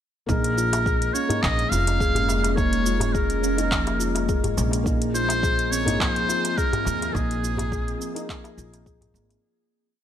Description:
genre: organic downtempo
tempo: 105 BPM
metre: 4/4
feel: swing 54% on 16ths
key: Bb minor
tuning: A4 = 440 Hz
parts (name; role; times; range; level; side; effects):
- trumpet with metal mute; melody; 0.3-8.3 s; Ab4 to F5; -26 LUFS; equal; digital delay
- felt-muted upright piano; accompaniment; 0.3-9.5 s; Bb3 to Ab4; -31 LUFS; left 3 dB; sidechain pumping
- ethereal airy pad; sustained chords; 1.2-9.4 s; F3 to Ab4; -32 LUFS; left 1 dB; ensemble chorus, built-in reverb, sidechain pumping
- steel tongue drum; arpeggios; 0.3-9.2 s; F3 to Ab4; -29 LUFS; left 1 dB; none
- upright bass; bass; 0.3-9.3 s; F1 to Eb2; -27 LUFS; equal; sidechain pumping
- afro-pop drum kit; drums; 0.3-9.4 s; handclaps, hi-hat, shaker; -30 LUFS; right 1 dB; none
- electronic kick drum; drums; 0.3-9.0 s; none; -26 LUFS; equal; none
- darbuka; percussion; 0.7-9.4 s; none; -32 LUFS; left 1 dB; none
room: light reverb, studio reverb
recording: none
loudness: -20 LUFS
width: side -10 dB against mid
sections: 0.3-9.4 groove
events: fade-out 6.4-9.4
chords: 0.3 Bbm7; 4.9 Fm7/Bb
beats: | 0.29 0.86 1.43 2.00 | 2.57 3.14 3.71 4.29 | 4.86 5.43 6.00 6.57 | 7.14 7.71 8.29 8.86

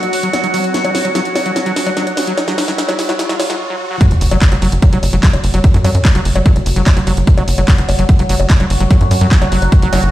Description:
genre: psychedelic trance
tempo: 147 BPM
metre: 4/4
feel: straight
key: unclear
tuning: A4 = 441 Hz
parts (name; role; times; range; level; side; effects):
- overtone-sweeping drone; sustained chords; 0.0-10.1 s; F#3 to F#4; -22 LUFS; right 1 dB; chorus, built-in reverb, sidechain pumping
- techno drum kit; drums; 0.0-10.1 s; bongos, handclaps, hi-hat, snare drum; -19 LUFS; left 1 dB; none
- riser, sub drop and zap; sound effects; 0.6-5.6, 9.9-10.0 s; none; -24 LUFS; equal; none
- ethereal airy pad; texture; 0.0-3.6 s; F#4 to F#5; -24 LUFS; equal; ensemble chorus, built-in reverb, tremolo, sidechain pumping
- overdriven acid bass; riff; 0.2-10.0 s; F#3; -22 LUFS; equal; auto-pan, sidechain pumping, digital delay
- electronic kick drum; drums; 4.0-9.8 s; none; -10 LUFS; equal; overdrive
- tight sequencer bass; bass; 4.1-10.1 s; F#1 to F#2; -14 LUFS; equal; none
room: light reverb, digital ambience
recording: played on a big sound system in a bare room, stone room reverb, high-pass filter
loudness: -11 LUFS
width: side -14 dB against mid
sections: 0.0-4.0 A section; 4.0-10.1 B section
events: build-up 0.0-4.0; drum fill 0.0-3.6; filter sweep on acid bass 0.0-4.0; riser 0.6-4.0; break 3.6-4.0; drop 4.0-10.1; impact 4.0-5.6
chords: 0.0 F#5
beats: 0.33 | 0.74 1.15 1.56 1.97 | 2.38 2.78 3.19 3.60 | 4.01 4.42 4.82 5.23 | 5.64 6.05 6.46 6.87 | 7.27 7.68 8.09 8.50 | 8.91 9.31 9.72

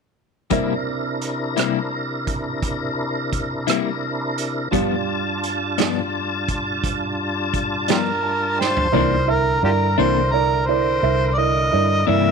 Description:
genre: slow blues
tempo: 57 BPM (dotted quarters)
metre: 12/8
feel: straight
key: C mixolydian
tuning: A4 = 439 Hz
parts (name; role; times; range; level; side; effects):
- dark upright piano; accompaniment; 0.5-12.3 s; G3 to A5; -24 LUFS; right 12 dB; none
- electric guitar at the edge of break-up; accompaniment; 0.5-12.3 s; G2 to E4; -22 LUFS; left 15 dB; tremolo
- tonewheel organ; sustained chords; 0.5-12.3 s; G2 to A5; -25 LUFS; equal; slow rotary speaker, overdrive, chorus vibrato
- vintage drum kit; drums; 0.5-8.9 s; hi-hat, kick drum, rim click, snare drum, toms; -26 LUFS; right 4 dB; none
- mellow harmonica; melody; 7.9-12.3 s; F4 to E5; -20 LUFS; equal; overdrive, slapback echo
- vintage muted fingered electric bass; bass; 8.9-12.3 s; C2 to G2; -22 LUFS; left 1 dB; none
room: studio ambience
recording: 1960s-style stereo with parts hard left and right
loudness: -18 LUFS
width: side -5 dB against mid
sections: 0.5-8.9 A section; 8.9-12.3 B section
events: upright piano fill 7.9-8.9; drum fill 8.6-8.9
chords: 0.5 C7; 4.7 G7; 8.9 C9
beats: | 0.52 1.57 2.63 3.68 | 4.73 5.78 6.83 7.88 | 8.93 9.98 11.03 12.08

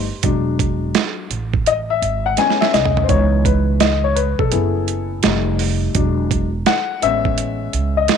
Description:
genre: hip hop, jazz-hop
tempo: 84 BPM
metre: 4/4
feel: swing 65% on 16ths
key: unclear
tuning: A4 = 441 Hz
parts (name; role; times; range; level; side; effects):
- dark upright piano; accompaniment; 0.0-8.2 s; E3 to G#5; -19 LUFS; left 9 dB; none
- upright bass; bass; 0.0-8.1 s; E1 to C#2; -20 LUFS; right 2 dB; none
- dusty soul sampler-style drum kit; drums; 0.2-8.2 s; hi-hat, kick drum, snare drum, toms; -20 LUFS; right 7 dB; overdrive
room: light reverb, small room ambience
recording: 1960s-style stereo with parts hard left and right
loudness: -15 LUFS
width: side -7 dB against mid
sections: 0.0-8.2 A section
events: upright piano solo 0.0-8.2; drum fill 2.4-3.1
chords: 0.2 E9; 1.3 Amaj7; 3.1 C#m9; 4.5 F#7sus4; 5.2 F9; 6.0 E9; 7.0 Amaj7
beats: | 0.24 0.95 1.67 2.38 | 3.09 3.81 4.52 5.24 | 5.95 6.67 7.38 8.09

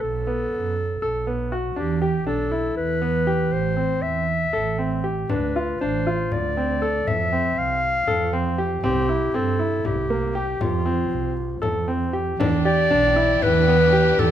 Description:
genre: contemporary instrumental, chamber music in an uneven meter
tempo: 237 BPM (eighths)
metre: 7/8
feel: straight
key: F lydian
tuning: A4 = 437 Hz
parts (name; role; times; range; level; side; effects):
- warm clarinet; melody; 0.0-14.3 s; F4 to F5; -23 LUFS; left 2 dB; none
- clear concert grand piano; arpeggios; 0.0-14.3 s; Bb3 to A4; -25 LUFS; left 1 dB; none
- warm double bass; bass; 0.0-14.3 s; A1 to G2; -25 LUFS; right 5 dB; none
- frame drum; percussion; 5.3-14.3 s; none; -28 LUFS; left 4 dB; none
- clear studio string section; sustained chords; 12.4-14.3 s; E3 to G4; -28 LUFS; left 1 dB; none
room: light reverb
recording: close, detailed microphones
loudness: -20 LUFS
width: side -10 dB against mid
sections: 0.0-12.4 A section; 12.4-14.3 B section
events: none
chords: 0.0 B5; 1.8 Em7; 3.5 Am7; 5.3 Dm7; 7.1 Fmaj7; 8.8 C7; 10.6 F; 12.4 Em7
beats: | 0.02 0.27 0.52 0.77 1.02 1.27 1.52 | 1.77 2.02 2.27 2.52 2.77 3.02 3.27 | 3.52 3.77 4.02 4.27 4.53 4.78 5.04 | 5.30 5.55 5.80 6.06 6.31 6.57 6.82 | 7.07 7.32 7.57 7.82 8.07 8.32 8.57 | 8.83 9.08 9.33 9.59 9.84 10.09 10.35 | 10.60 10.85 11.11 11.36 11.62 11.88 12.13 | 12.39 12.65 12.91 13.16 13.42 13.67 13.93 | 14.18

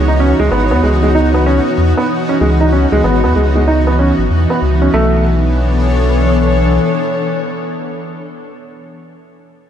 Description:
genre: IDM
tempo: 95 BPM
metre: 4/4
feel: swing 62% on 16ths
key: unclear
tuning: A4 = 441 Hz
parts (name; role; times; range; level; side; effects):
- glassy FM pad; sustained chords; 0.0-8.2 s; E3 to C#5; -15 LUFS; left 1 dB; ensemble chorus, built-in reverb
- warm sub bass; bass; 0.0-6.8 s; G#1 to E2; -14 LUFS; equal; tube saturation
- felt-muted upright piano; arpeggios; 0.1-5.2 s; G#3 to D#4; -15 LUFS; right 2 dB; low-pass filter, digital delay
room: moderate echo chamber reverb, RT60 2.1 s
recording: none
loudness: -10 LUFS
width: side -9 dB against mid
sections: 0.0-4.9 A section; 4.9-7.5 B section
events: filter sweep on felt piano 0.0-4.9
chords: 0.0 C#m11; 4.9 Bm11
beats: 0.52 1.15 1.78 | 2.41 3.04 3.67 4.30 | 4.94 5.57 6.20 6.83

